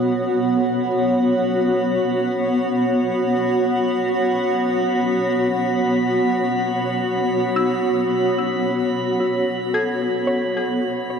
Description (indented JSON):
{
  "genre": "ambient",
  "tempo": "56 BPM",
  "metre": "4/4",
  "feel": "straight",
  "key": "B mixolydian",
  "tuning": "A4 = 439 Hz",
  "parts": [
    { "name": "granular cloud pad", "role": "sustained chords", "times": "0.0-11.2 s", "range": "B3 to F#5", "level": "-18 LUFS", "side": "equal", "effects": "built-in reverb" },
    { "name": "soft round pluck", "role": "arpeggios", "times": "0.0-11.2 s", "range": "D#4 to G#6", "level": "-26 LUFS", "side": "left 1 dB", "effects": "chorus, ping-pong delay" },
    { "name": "drifting glass-harmonics texture", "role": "texture", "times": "0.0-11.2 s", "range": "B5", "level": "-31 LUFS", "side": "equal", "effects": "chorus, built-in reverb" }
  ],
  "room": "wet huge ambient reverb, RT60 7.4 s",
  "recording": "none",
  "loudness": "-18 LUFS",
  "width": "side -6 dB against mid",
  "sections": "0.0-11.2 A section",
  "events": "fade-in on synth pluck 0.0-11.2; fade-in on synth texture 0.0-11.2",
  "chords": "0.0 B9sus4",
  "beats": "| 0.02 1.10 2.17 3.25 | 4.32 5.40 6.48 7.56 | 8.65 9.73 10.82"
}